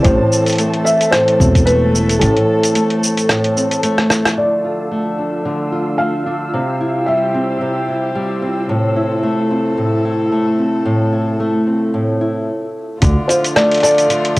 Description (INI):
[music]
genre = folktronica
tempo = 111 BPM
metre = 4/4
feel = swing 56% on 16ths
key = A minor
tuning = A4 = 440 Hz
[part]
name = felt-muted upright piano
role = melody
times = 0.0-8.4, 13.3-14.4 s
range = A4 to F5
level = -17 LUFS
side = equal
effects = cassette tape, plate reverb
[part]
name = warm string quartet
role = sustained chords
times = 0.0-14.4 s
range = C3 to A4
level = -22 LUFS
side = equal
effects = low-pass filter, cassette tape
[part]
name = nylon-string guitar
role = arpeggios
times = 0.0-14.4 s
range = A2 to A4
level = -17 LUFS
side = equal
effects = low-pass filter, cassette tape, analog delay
[part]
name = upright bass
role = bass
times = 0.0-2.3, 13.0-14.4 s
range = E1 to D2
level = -15 LUFS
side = equal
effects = none
[part]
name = electronic kick drum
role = drums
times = 0.0-1.6, 13.0-14.4 s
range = none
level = -15 LUFS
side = equal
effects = studio ambience, cassette tape
[part]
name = lo-fi sampler-style drum kit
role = drums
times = 0.0-4.4, 13.0-14.4 s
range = hi-hat, rim click, shaker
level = -18 LUFS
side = equal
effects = low-pass filter on hats, studio ambience, cassette tape, low-pass filter on perc, low-pass filter on snare
[part]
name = flickering grainy texture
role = texture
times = 0.0-12.5 s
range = F4 to E6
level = -29 LUFS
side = equal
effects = built-in reverb, cassette tape, plate reverb
[sound]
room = moderate booth ambience, RT60 0.2 s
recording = home recording on cassette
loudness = -13 LUFS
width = side -20 dB against mid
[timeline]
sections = 0.0-4.4 A section; 4.4-13.0 B section; 13.0-14.4 C section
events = drum fill 4.0-4.4; band accent 4.2; filter sweep on nylon-string guitar 4.4-13.0; filter sweep on string quartet 4.4-13.0; break 12.5-13.0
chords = 0.0 Am; 4.4 Dm; 6.5 C; 8.7 Am; 13.0 Dm